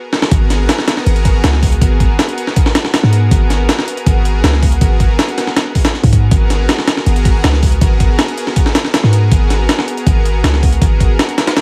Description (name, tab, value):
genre	drum and bass, jungle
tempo	160 BPM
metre	4/4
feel	straight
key	G# minor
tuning	A4 = 442 Hz
part	lush unison pad	sustained chords	0.1-11.5 s	B3 to A#4	-23 LUFS	equal	chorus
part	breakbeat sampler-style drum kit	drums	0.1-11.6 s	hi-hat, kick drum, snare drum	-15 LUFS	equal	small room reverb
part	warm 808-style bass	bass	0.3-11.2 s	G#1 to G#2	-15 LUFS	equal	none
room	little or no reverb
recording	vinyl crackle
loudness	-13 LUFS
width	mono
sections	0.3-11.6 A section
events	break 0.0-0.3; drum fill 0.1; drop 0.3-11.6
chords	0.3 G#m9